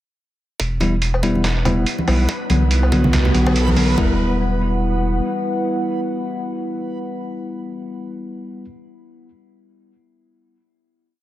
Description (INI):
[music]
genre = deep dubstep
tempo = 142 BPM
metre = 4/4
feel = swing 58% on 16ths, half-time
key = E minor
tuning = A4 = 440 Hz
[part]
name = dark analog pad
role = sustained chords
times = 0.6-8.1 s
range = B3 to F#5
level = -26 LUFS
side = right 2 dB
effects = wide subtle chorus
[part]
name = soft dub sub bass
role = bass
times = 0.6-5.2 s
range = E1 to C2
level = -18 LUFS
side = equal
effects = tube saturation
[part]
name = dubstep drum kit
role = drums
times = 0.6-4.1 s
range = kick drum, toms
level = -24 LUFS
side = equal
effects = high-pass filter on kick, high-pass filter on toms, high-pass filter on room
[part]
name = trip hop sampler-style drum kit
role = drums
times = 0.6-3.9 s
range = hi-hat, snare drum, woodblock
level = -25 LUFS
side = equal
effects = high-pass filter on hats, high-pass filter on perc, high-pass filter on snare, high-pass filter on room
[part]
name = riser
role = sound effects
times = 2.0-4.0 s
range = none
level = -30 LUFS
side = right 2 dB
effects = none
[part]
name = backwards swelling texture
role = texture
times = 1.2-4.0 s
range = B3 to B4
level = -32 LUFS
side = right 1 dB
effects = built-in reverb
[part]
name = bell-like tine electric piano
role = stabs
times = 0.8-8.6 s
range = D3 to E4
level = -22 LUFS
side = left 2 dB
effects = dub echo
[part]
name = congas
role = percussion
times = 0.8-3.7 s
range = none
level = -25 LUFS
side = right 2 dB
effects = none
[sound]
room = light reverb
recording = none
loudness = -17 LUFS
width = side -14 dB against mid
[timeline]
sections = 0.6-4.0 build; 4.0-7.4 final chord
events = build-up 0.6-4.0; filter sweep on analog synth pad 0.6-4.0; riser 2.0-4.0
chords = 0.6 Em; 2.3 Bm; 4.0 Em